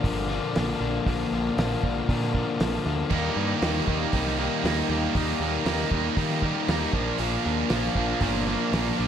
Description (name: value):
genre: classic rock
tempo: 118 BPM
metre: 4/4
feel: straight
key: unclear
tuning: A4 = 440 Hz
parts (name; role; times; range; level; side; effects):
- overdriven tonewheel organ; sustained chords; 0.0-9.1 s; D4 to G5; -38 LUFS; right 2 dB; none
- crunchy overdriven guitar; riff; 0.0-9.1 s; Bb2 to Eb4; -27 LUFS; left 4 dB; slapback echo
- growling picked electric bass; bass; 0.0-9.1 s; G1 to Eb3; -30 LUFS; right 1 dB; overdrive
- cloth-damped thuddy drum kit; drums; 0.0-8.9 s; crash cymbal, hi-hat, kick drum, snare drum; -30 LUFS; right 1 dB; none
- distorted electric guitar; riff; 3.1-9.1 s; Bb2 to Eb4; -28 LUFS; right 12 dB; overdrive
room: moderate recital hall reverb, RT60 1.6 s, small room reverb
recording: big arena sound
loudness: -23 LUFS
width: side -9 dB against mid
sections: 0.0-9.1 A section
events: none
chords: 0.0 Bb; 3.1 Eb; 6.9 Bb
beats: 0.05 0.56 | 1.07 1.58 2.09 2.60 | 3.11 3.62 4.13 4.64 | 5.16 5.67 6.18 6.69 | 7.20 7.71 8.22 8.73